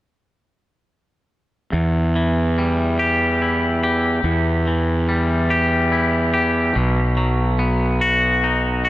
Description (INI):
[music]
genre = rock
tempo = 48 BPM (dotted quarters)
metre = 6/8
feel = straight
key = E minor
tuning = A4 = 440 Hz
[part]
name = twangy electric guitar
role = arpeggios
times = 1.7-8.9 s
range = E2 to G4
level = -20 LUFS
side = left 1 dB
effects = analog delay
[part]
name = fuzz fingered electric bass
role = bass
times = 1.7-8.9 s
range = B1 to E2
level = -18 LUFS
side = equal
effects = overdrive
[sound]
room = light reverb, digital ambience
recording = none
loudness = -16 LUFS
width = side -15 dB against mid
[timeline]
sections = 1.7-8.9 A section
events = none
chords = 1.7 Em; 6.8 B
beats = | 1.73 2.99 | 4.25 5.50 | 6.76 8.02